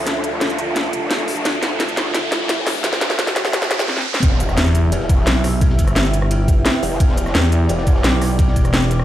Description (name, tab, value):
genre	dark technical drum and bass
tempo	173 BPM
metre	4/4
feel	straight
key	E phrygian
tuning	A4 = 440 Hz
part	dark analog pad	sustained chords	0.0-9.0 s	B3 to E5	-24 LUFS	equal	chorus, sidechain pumping
part	growl bass	bass	0.0-8.0 s	E1 to D2	-25 LUFS	equal	chorus
part	riser and impact	sound effects	0.0-5.6 s	none	-25 LUFS	equal	none
part	drum and bass drum kit	drums	0.1-9.0 s	hi-hat, rim click, shaker, snare drum	-20 LUFS	equal	none
part	crunchy breakbeat drum kit	drums	4.2-9.0 s	ride cymbal, snare drum	-31 LUFS	equal	high-pass filter on cymbals, high-pass filter on snare, high-pass filter on room
part	electronic kick drum	drums	4.2-8.6 s	none	-15 LUFS	equal	none
part	growling FM bass	bass	4.6-9.0 s	E1 to E2	-17 LUFS	equal	none
room	light reverb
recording	played on a big sound system in a bare room, large studio reverb, high-pass filter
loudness	-15 LUFS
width	side -12 dB against mid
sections	0.0-4.2 A section; 4.2-9.0 B section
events	build-up 0.0-4.2; drum fill 0.0-3.9, 3.9-4.2; riser 0.0-4.2; drop 4.2-9.0; impact 4.2-5.6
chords	0.0 Dmadd9; 4.2 Em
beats	| 0.07 0.41 0.76 1.11 | 1.45 1.80 2.15 2.49 | 2.84 3.19 3.53 3.88 | 4.23 4.57 4.92 5.27 | 5.62 5.96 6.31 6.66 | 7.00 7.35 7.70 8.04 | 8.39 8.74